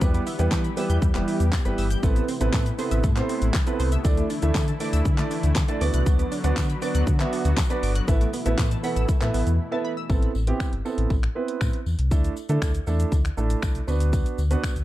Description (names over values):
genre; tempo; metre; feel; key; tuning
dance-pop; 119 BPM; 4/4; straight; A dorian; A4 = 440 Hz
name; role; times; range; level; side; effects
warm grand piano; accompaniment; 0.0-14.7 s; G3 to F#5; -28 LUFS; right 4 dB; sidechain pumping
sweeping resonant pad; sustained chords; 0.0-10.1 s; B2 to G4; -32 LUFS; left 2 dB; chorus, sidechain pumping
tight sequenced synth; arpeggios; 0.0-10.0 s; E3 to G6; -35 LUFS; left 1 dB; chorus, sidechain pumping, tape echo
sub bass with octave; bass; 0.0-14.8 s; E1 to E3; -23 LUFS; equal; sidechain pumping
pop drum kit; drums; 0.0-14.8 s; finger snaps, handclaps, hi-hat, kick drum, shaker, snare drum; -24 LUFS; equal; none
tambourine; percussion; 0.0-14.8 s; none; -46 LUFS; left 9 dB; none
room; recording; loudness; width
digital ambience; dark, warm production; -21 LUFS; side -15 dB against mid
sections
0.0-10.1 A section; 10.1-14.8 B section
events
break 9.6-10.1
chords
0.0 Em; 2.0 Amadd9; 4.0 Dsus2; 5.8 Bm; 8.1 Asus2; 10.1 Amadd9; 12.1 Dsus2; 13.9 Bm/D